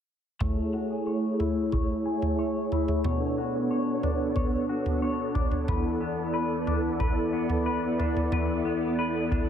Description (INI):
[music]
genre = dream pop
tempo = 91 BPM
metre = 4/4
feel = straight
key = unclear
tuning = A4 = 438 Hz
[part]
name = string machine, violas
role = sustained chords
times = 0.4-9.5 s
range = A3 to D5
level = -28 LUFS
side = right 1 dB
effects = ensemble chorus, low-pass filter
[part]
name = semi-hollow electric guitar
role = arpeggios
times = 0.4-9.5 s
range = E2 to C#5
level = -32 LUFS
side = left 4 dB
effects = wide subtle chorus, low-pass filter, digital delay
[part]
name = booming analog drum machine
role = drums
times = 0.4-9.5 s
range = kick drum, toms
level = -29 LUFS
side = right 1 dB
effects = none
[sound]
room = moderate huge ambient reverb, RT60 6.3 s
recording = none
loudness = -25 LUFS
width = side -8 dB against mid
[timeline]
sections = 0.4-9.5 A section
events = filter sweep 0.4-9.5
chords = 0.4 Amaj7; 3.0 Bm9; 5.7 E7sus4